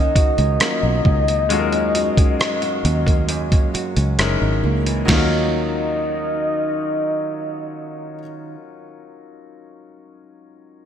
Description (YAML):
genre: contemporary R&B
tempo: 67 BPM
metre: 4/4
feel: straight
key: Eb minor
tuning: A4 = 439 Hz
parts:
  - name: soft octave-layered synth lead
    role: melody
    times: 0.0-8.2 s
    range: Eb5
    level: -23 LUFS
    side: left 2 dB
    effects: chorus, ping-pong delay
  - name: clear concert grand piano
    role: accompaniment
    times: 0.0-10.9 s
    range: Gb3 to Db5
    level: -26 LUFS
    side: left 7 dB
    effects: none
  - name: nylon-string guitar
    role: arpeggios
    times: 0.0-8.7 s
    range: Gb2 to Gb4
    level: -26 LUFS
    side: right 7 dB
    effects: lush chorus
  - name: fingered electric bass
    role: bass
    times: 0.0-8.2 s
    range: Gb1 to Eb2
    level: -21 LUFS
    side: equal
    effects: none
  - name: dusty soul sampler-style drum kit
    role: drums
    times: 0.2-5.3 s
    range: crash cymbal, hi-hat, kick drum, rim click, snare drum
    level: -19 LUFS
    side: equal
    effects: gated reverb
room: light reverb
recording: bright 1980s-style digital production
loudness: -16 LUFS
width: side -9 dB against mid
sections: 0.0-5.1 A section; 5.1-8.7 B section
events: none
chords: 0.0 Ebm7; 1.5 Gbmaj7/Eb; 4.2 Gb13; 5.1 Ebm7